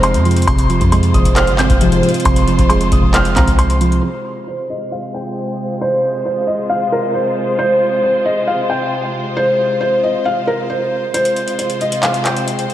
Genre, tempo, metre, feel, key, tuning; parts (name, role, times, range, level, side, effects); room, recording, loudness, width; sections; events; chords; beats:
hip hop, trap; 135 BPM; 4/4; half-time; F minor; A4 = 440 Hz
felt-muted upright piano; melody; 0.0-12.7 s; Bb4 to G6; -17 LUFS; equal; low-pass filter, diffuse ambient delay
soft electric-piano-like synth keys; accompaniment; 0.0-4.1 s; C3 to C5; -17 LUFS; right 3 dB; chorus, low-pass filter
dark studio string section; sustained chords; 0.0-12.7 s; C3 to C5; -21 LUFS; left 1 dB; low-pass filter
warm 808-style bass; bass; 0.0-4.0 s; F1 to F2; -16 LUFS; equal
booming analog drum machine; drums; 0.0-4.0, 11.1-12.7 s; handclaps, hi-hat, kick drum; -17 LUFS; equal
chorused polysynth; stabs; 1.8-2.1 s; Ab2 to F3; -18 LUFS; left 5 dB
wet lush hall reverb, RT60 2.1 s; dreamy mix soaked in reverb; -13 LUFS; side -12 dB against mid
0.0-4.0 A section; 4.0-11.1 B section; 11.1-12.7 C section
filter sweep 4.0-11.1; kick muted 11.1-12.7
0.0 Fm
0.03 | 0.48 0.92 1.36 1.81 | 2.25 2.70 3.14 3.59 | 4.03 4.48 4.92 5.37 | 5.81 6.25 6.70 7.14 | 7.59 8.03 8.48 8.92 | 9.37 9.81 10.25 10.70 | 11.14 11.59 12.03 12.48